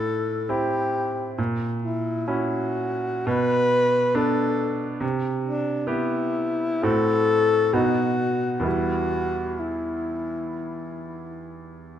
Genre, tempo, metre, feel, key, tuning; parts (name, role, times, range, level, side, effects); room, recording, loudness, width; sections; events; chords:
classical, romantic duo for alto saxophone and grand piano; 58-70 BPM; 4/4; rubato; E minor; A4 = 440 Hz
mellow alto saxophone; melody; 0.0-11.5 s; D4 to B4; -24 LUFS; left 2 dB
bright grand piano; accompaniment; 0.0-12.0 s; E2 to G4; -25 LUFS; right 2 dB
light reverb; close, detailed microphones; -21 LUFS; side -10 dB against mid
0.0-12.0 A section
0.0 Am7; 1.4 F#7/A#; 3.3 Bm; 5.0 Cmaj7; 6.8 F#dim/A; 7.7 B; 8.7 Em